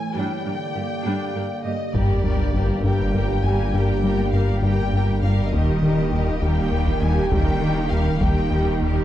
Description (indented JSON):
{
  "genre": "cinematic, hybrid orchestral and electronic film score",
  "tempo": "67 BPM (dotted quarters)",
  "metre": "6/8",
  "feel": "straight",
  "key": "G minor",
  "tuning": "A4 = 440 Hz",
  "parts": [
    { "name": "warm symphonic violin section", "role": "melody", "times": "0.0-8.8 s", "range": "D5 to Ab5", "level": "-32 LUFS", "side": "left 4 dB", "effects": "none" },
    { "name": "warbly tape-like pad", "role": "sustained chords", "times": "0.0-9.0 s", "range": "D3 to G5", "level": "-29 LUFS", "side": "right 1 dB", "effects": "chorus, built-in reverb" },
    { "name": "rich symphonic viola section", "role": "accompaniment", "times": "0.2-9.0 s", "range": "G3 to Bb4", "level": "-30 LUFS", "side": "right 2 dB", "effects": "none" },
    { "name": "rich symphonic cello section", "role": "bass", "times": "0.2-9.0 s", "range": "G2 to Eb3", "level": "-26 LUFS", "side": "right 3 dB", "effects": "none" },
    { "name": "rich symphonic violin section", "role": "second line", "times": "1.9-9.0 s", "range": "G4 to Bb4", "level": "-31 LUFS", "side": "left 3 dB", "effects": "none" },
    { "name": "rubbery square bass", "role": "riff", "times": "1.9-9.0 s", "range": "Eb2 to G3", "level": "-22 LUFS", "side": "left 2 dB", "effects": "none" },
    { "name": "swelling detuned saw bass", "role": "bass", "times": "1.9-9.0 s", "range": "Eb1 to G1", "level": "-26 LUFS", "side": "equal", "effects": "none" },
    { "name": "taiko ensemble", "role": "drums", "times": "1.9-8.8 s", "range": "none", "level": "-26 LUFS", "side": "equal", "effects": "none" },
    { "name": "sub drop", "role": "sound effects", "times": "1.9-3.7 s", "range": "none", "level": "-27 LUFS", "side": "equal", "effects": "none" }
  ],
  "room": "moderate scoring stage reverb, RT60 1.5 s",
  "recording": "dark, warm production",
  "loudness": "-19 LUFS",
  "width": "side -12 dB against mid",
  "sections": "0.0-1.9 A section; 1.9-9.0 B section",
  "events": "impact 1.9-3.7",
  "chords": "0.2 Gm; 5.5 Eb"
}